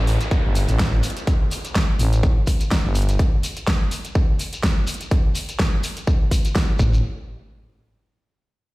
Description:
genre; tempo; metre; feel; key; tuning
bass house; 125 BPM; 4/4; swing 55% on 16ths; unclear; A4 = 440 Hz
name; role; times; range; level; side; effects
growling FM bass; bass; 0.0-3.2, 6.8-7.0 s; G1 to A1; -19 LUFS; equal; sidechain pumping
downlifter; sound effects; 0.0-3.2 s; none; -32 LUFS; right 1 dB; none
big-room dance drum kit; drums; 0.1-6.7 s; hi-hat, snare drum; -27 LUFS; equal; overdrive
breakbeat sampler-style drum kit; drums; 0.1-3.2 s; hi-hat, snare drum; -40 LUFS; equal; none
shekere; percussion; 0.1-7.0 s; none; -33 LUFS; left 2 dB; none
electronic kick drum; drums; 0.3-6.9 s; none; -19 LUFS; equal; overdrive
room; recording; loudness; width
digital ambience; played on a big sound system in a bare room, stone room reverb; -18 LUFS; side -20 dB against mid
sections
0.0-7.0 A section; 7.0-8.7 B section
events
none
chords
none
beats
0.31 0.79 | 1.27 1.75 2.23 2.71 | 3.19 3.67 4.15 4.63 | 5.11 5.59 6.07 6.55

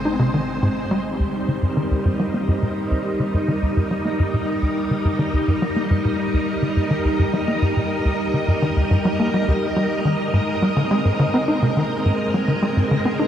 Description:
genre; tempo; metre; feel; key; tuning
ambient, sequencer-driven space music; 105 BPM; 4/4; straight; unclear; A4 = 441 Hz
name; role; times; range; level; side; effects
string machine, full ensemble; sustained chords; 0.0-13.3 s; G3 to Eb5; -22 LUFS; equal; ensemble chorus
analog drone; bass; 0.0-1.0 s; Ab1; -41 LUFS; equal; chorus
tight sequencer bass; riff; 0.1-13.3 s; Eb2 to Eb4; -20 LUFS; equal; lush chorus, tape echo
room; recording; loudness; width
wet huge ambient reverb, RT60 8.1 s; dark, warm production; -18 LUFS; side -10 dB against mid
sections
0.0-1.1 A section; 1.1-13.3 B section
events
filter sweep on analog synth bass 1.1-13.3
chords
0.0 Ab; 1.1 Eb; 10.2 Abadd9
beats
0.48 | 1.05 1.62 2.19 2.77 | 3.34 3.91 4.48 5.05 | 5.62 6.19 6.76 7.34 | 7.91 8.48 9.05 9.62 | 10.19 10.77 11.34 11.91 | 12.48 13.05

